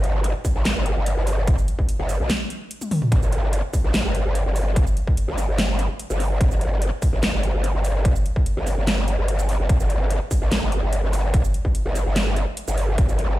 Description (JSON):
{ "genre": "heavy wobble dubstep", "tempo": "146 BPM", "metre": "4/4", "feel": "half-time", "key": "G minor", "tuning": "A4 = 440 Hz", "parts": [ { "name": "growl bass", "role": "bass", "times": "0.0-13.4 s", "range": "G1 to Bb1", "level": "-21 LUFS", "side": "equal", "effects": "chorus, overdrive" }, { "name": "dubstep drum kit", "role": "drums", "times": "0.0-13.3 s", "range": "handclaps, hi-hat, shaker, snare drum, toms", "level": "-26 LUFS", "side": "equal", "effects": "none" }, { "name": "electronic kick drum", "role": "drums", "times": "0.4-13.1 s", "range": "none", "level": "-19 LUFS", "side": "equal", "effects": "distortion" } ], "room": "digital ambience", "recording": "played on a big sound system in a bare room, stone room reverb", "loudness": "-19 LUFS", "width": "side -16 dB against mid", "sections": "0.0-13.4 A section", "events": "break 2.3-3.1; drum fill 2.8-3.1", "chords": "none" }